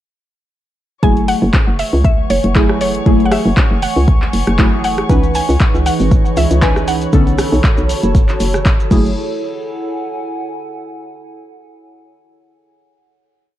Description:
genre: deep house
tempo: 118 BPM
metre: 4/4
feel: swing 55% on 16ths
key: F# minor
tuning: A4 = 440 Hz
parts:
  - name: mallet-like synth pluck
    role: melody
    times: 1.0-8.6 s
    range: C#5 to G#5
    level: -21 LUFS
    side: equal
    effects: chorus, analog delay
  - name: deep mellow chord stab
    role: stabs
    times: 1.0-9.1 s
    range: D3 to B4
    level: -18 LUFS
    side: equal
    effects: chorus, phaser, sidechain pumping, analog delay
  - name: hollow knocking FM bass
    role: bass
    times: 1.0-9.1 s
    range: F#1 to C#2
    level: -17 LUFS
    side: equal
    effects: sidechain pumping
  - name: electronic kick drum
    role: drums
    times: 1.0-9.0 s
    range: none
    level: -13 LUFS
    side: equal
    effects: none
  - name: punchy analog drum machine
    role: drums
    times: 1.0-9.0 s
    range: crash cymbal, handclaps, hi-hat, rim click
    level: -22 LUFS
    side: equal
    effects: none
  - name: warbly tape-like pad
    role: texture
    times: 1.7-11.2 s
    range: D3 to B5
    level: -26 LUFS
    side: right 2 dB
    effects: chorus, built-in reverb, sidechain pumping
  - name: warm chamber violin section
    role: texture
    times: 1.0-9.2 s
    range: C#5 to C#6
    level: -29 LUFS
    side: left 4 dB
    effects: sidechain pumping
  - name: warbly tape-like pad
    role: sustained chords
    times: 5.5-9.1 s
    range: D3 to C#5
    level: -23 LUFS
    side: right 2 dB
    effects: chorus, built-in reverb, sidechain pumping
  - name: maracas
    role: percussion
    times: 5.1-9.1 s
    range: none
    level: -35 LUFS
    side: left 1 dB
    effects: none
room: digital ambience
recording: cassette tape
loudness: -11 LUFS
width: side -13 dB against mid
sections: 1.0-9.2 drop; 9.2-11.2 final chord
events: drop 1.0-9.2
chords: 1.0 F#m9; 5.1 C#m9; 7.1 Bm9; 8.9 F#m9

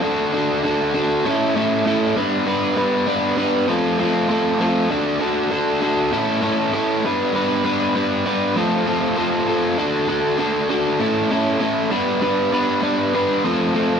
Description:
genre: rock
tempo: 98 BPM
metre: 4/4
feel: straight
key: unclear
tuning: A4 = 440 Hz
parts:
  - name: overdriven electric guitar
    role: solo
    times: 0.0-14.0 s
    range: A2 to B4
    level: -17 LUFS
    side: equal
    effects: none
room: moderate large studio reverb, RT60 0.9 s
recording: band playing live in one room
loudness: -17 LUFS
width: side -7 dB against mid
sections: 0.0-14.0 A section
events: none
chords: 0.0 D; 1.3 A; 2.2 G; 3.7 F; 4.9 D; 6.1 A; 7.0 G; 8.6 F; 9.8 D; 11.0 A; 11.9 G; 13.4 F

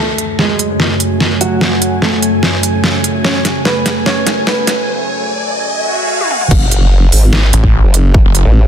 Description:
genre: heavy wobble dubstep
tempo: 147 BPM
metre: 4/4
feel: half-time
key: F# minor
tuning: A4 = 439 Hz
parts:
  - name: warm baby grand piano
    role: melody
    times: 0.0-4.7 s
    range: F#3 to C#5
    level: -18 LUFS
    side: right 1 dB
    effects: ping-pong delay
  - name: lush unison pad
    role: sustained chords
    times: 0.0-8.7 s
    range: F#2 to G#5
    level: -20 LUFS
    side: left 1 dB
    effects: chorus, sidechain pumping
  - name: riser and swell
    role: sound effects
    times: 0.0-6.5 s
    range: none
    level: -21 LUFS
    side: equal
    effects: none
  - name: warbly tape-like pad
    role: texture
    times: 0.0-4.9 s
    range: A3 to G#5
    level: -20 LUFS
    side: right 3 dB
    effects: chorus, built-in reverb, sidechain pumping
  - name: dubstep drum kit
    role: drums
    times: 0.2-8.4 s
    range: crash cymbal, hi-hat, snare drum, toms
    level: -15 LUFS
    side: equal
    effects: none
  - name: formant-sweep wobble bass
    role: bass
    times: 6.5-8.7 s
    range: F#1 to A1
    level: -9 LUFS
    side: equal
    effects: chorus, overdrive
  - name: electronic kick drum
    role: drums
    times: 6.5-8.2 s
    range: none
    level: -11 LUFS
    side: equal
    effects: none
  - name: snarling distorted saw bass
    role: bass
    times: 7.5-8.4 s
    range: F#1 to A1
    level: -11 LUFS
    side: equal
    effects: distortion, overdrive
room: light reverb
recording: dense, heavily limited modern master, high-pass filter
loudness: -10 LUFS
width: side -9 dB against mid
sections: 0.0-6.5 A section; 6.5-8.7 B section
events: build-up 0.0-6.5; drum fill 0.0-4.9, 6.2-6.5; riser 0.0-6.5; break 4.9-6.5; swell 5.7-6.5; drop 6.5-8.7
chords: 0.0 F#madd9

